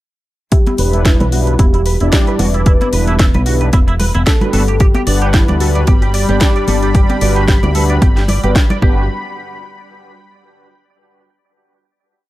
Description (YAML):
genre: nu-disco, nu disco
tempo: 112 BPM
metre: 4/4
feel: swing 56% on 16ths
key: G major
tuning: A4 = 440 Hz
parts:
  - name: soft octave-layered synth lead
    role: melody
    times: 0.5-8.5 s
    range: E4 to B4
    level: -22 LUFS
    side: equal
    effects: chorus, phaser, cassette tape, tape echo
  - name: direct-recorded clean electric guitar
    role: riff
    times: 0.5-9.1 s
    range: E4 to G5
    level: -24 LUFS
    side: right 3 dB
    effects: ensemble chorus, low-pass filter, analog delay
  - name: electronic kick drum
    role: drums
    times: 0.5-8.9 s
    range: none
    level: -12 LUFS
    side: equal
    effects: overdrive
  - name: house drum kit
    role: drums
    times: 0.5-8.8 s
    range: hi-hat, snare drum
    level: -21 LUFS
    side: equal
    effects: overdrive
  - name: congas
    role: percussion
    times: 0.7-8.9 s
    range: none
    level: -22 LUFS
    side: left 1 dB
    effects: none
  - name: mellow synth brass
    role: accompaniment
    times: 0.8-9.0 s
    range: G3 to F#5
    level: -20 LUFS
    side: equal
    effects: chorus, cassette tape, analog delay
  - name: fingered electric bass with an envelope filter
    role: bass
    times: 0.8-9.1 s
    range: E1 to D2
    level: -15 LUFS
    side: equal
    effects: none
  - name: lush unison pad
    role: sustained chords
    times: 5.2-9.1 s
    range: G3 to B5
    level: -24 LUFS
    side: left 1 dB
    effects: chorus, phaser, sidechain pumping
room: little or no reverb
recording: none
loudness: -10 LUFS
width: side -16 dB against mid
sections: 0.5-9.1 groove; 9.1-11.2 final hit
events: filter sweep on clean electric guitar 0.5-9.1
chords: 0.5 Em7; 4.5 Gmaj7; 9.1 N.C.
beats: | 0.52 1.05 1.59 2.13 | 2.66 3.20 3.73 4.27 | 4.80 5.34 5.88 6.41 | 6.95 7.48 8.02 8.55